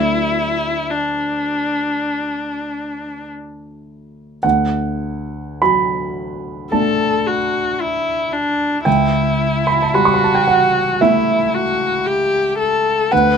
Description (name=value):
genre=classical, romantic duo for viola and grand piano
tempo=49-57 BPM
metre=4/4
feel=rubato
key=D major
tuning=A4 = 440 Hz
part: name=clear viola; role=melody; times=0.0-13.4 s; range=D4 to B4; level=-18 LUFS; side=left 3 dB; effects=none
part: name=warm concert grand piano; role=accompaniment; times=0.0-13.4 s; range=C#2 to C#6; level=-18 LUFS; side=right 3 dB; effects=none
room=light reverb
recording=minimal, uncompressed stereo recording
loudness=-15 LUFS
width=side -6 dB against mid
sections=0.0-4.4 A section; 4.4-13.4 A section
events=none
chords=0.0 D; 8.9 A7/C#